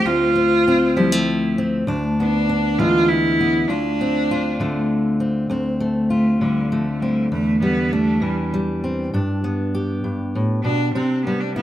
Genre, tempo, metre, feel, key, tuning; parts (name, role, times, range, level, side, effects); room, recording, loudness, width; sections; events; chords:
acoustic folk duo or small band; 66 BPM (dotted quarters); 6/8; straight; D dorian; A4 = 438 Hz
rich cello; melody; 0.0-11.6 s; F3 to F4; -20 LUFS; right 1 dB; plate reverb, tape echo
fingerpicked steel-string acoustic guitar; accompaniment; 0.0-11.6 s; D2 to G4; -19 LUFS; left 1 dB; plate reverb
moderate studio reverb, RT60 0.5 s; rough home demo mix; -17 LUFS; side -12 dB against mid
0.0-5.5 A section; 5.5-11.6 B section
cello solo 5.5-11.6
0.0 Fmaj7/D; 1.9 E7/D; 3.7 Dm7; 7.3 Cadd9/E; 9.1 G; 10.9 Csus2